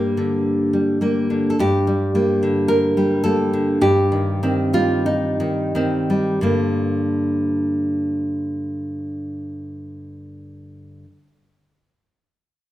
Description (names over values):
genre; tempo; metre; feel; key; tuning
romantic piece for solo classical guitar; 42-54 BPM; 2/4; rubato; G minor; A4 = 441 Hz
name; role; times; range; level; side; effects
nylon-string guitar; solo; 0.0-11.1 s; G2 to Bb4; -18 LUFS; equal; none
room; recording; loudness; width
wet recital hall reverb, RT60 1.4 s; none; -17 LUFS; side -14 dB against mid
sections
0.0-1.6 A section; 1.6-6.4 B section; 6.4-11.7 C section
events
slowing down 0.4-6.4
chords
0.0 Gm; 3.8 Cm/G; 6.4 Gm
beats
0.44 | 1.57 2.68 | 3.81 5.05 | 6.43 7.74 | 9.06 10.36